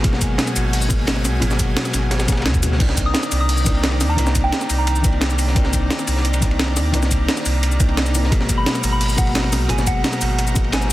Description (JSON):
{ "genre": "liquid drum and bass", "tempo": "174 BPM", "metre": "4/4", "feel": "straight", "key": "unclear", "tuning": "A4 = 441 Hz", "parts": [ { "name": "felt-muted upright piano", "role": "accompaniment", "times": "0.0-10.9 s", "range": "Cb3 to D4", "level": "-24 LUFS", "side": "left 1 dB", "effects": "tape echo" }, { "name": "lush unison pad", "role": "sustained chords", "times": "0.0-10.9 s", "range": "Eb3 to Bb5", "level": "-30 LUFS", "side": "equal", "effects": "chorus" }, { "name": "sub bass with octave", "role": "bass", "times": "0.0-10.9 s", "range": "Ab1 to Eb2", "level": "-20 LUFS", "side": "equal", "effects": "none" }, { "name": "breakbeat sampler-style drum kit", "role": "drums", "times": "0.0-10.9 s", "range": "crash cymbal, hi-hat, shaker, snare drum", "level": "-23 LUFS", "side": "equal", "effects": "none" }, { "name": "crunchy breakbeat drum kit", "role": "drums", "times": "0.0-10.9 s", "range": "hi-hat, ride cymbal, snare drum", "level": "-28 LUFS", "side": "equal", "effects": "high-pass filter on cymbals, high-pass filter on hats, high-pass filter on snare, high-pass filter on room" }, { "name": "electronic kick drum", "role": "drums", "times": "0.0-10.6 s", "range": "none", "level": "-19 LUFS", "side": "equal", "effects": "none" }, { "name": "soft synth bell", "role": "melody", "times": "3.1-4.9, 8.6-10.9 s", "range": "Gb5 to Eb6", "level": "-27 LUFS", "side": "equal", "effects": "chorus, phaser, tape echo" } ], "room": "small room ambience", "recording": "dense, heavily limited modern master", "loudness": "-16 LUFS", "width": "side -16 dB against mid", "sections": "0.0-10.9 A section", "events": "none", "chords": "0.0 Abm9; 2.8 Cm9; 8.3 Abm9" }